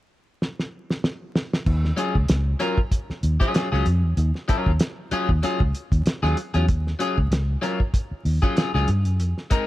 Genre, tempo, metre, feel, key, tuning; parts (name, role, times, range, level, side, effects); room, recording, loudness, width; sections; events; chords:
funk; 96 BPM; 4/4; swing 56% on 16ths; Eb minor; A4 = 440 Hz
cloth-damped thuddy drum kit; drums; 0.4-9.7 s; crash cymbal, hi-hat, kick drum, snare drum; -23 LUFS; equal
vintage muted fingered electric bass; bass; 1.7-9.3 s; Db2 to G2; -21 LUFS; equal
electric guitar at the edge of break-up; accompaniment; 2.0-9.7 s; Gb3 to Bb4; -26 LUFS; left 2 dB; wide subtle chorus
little or no reverb; vinyl crackle; -20 LUFS; side -16 dB against mid
0.0-1.7 A section; 1.7-9.7 B section
drum fill 0.4-1.7
0.0 N.C.; 1.7 Ebm11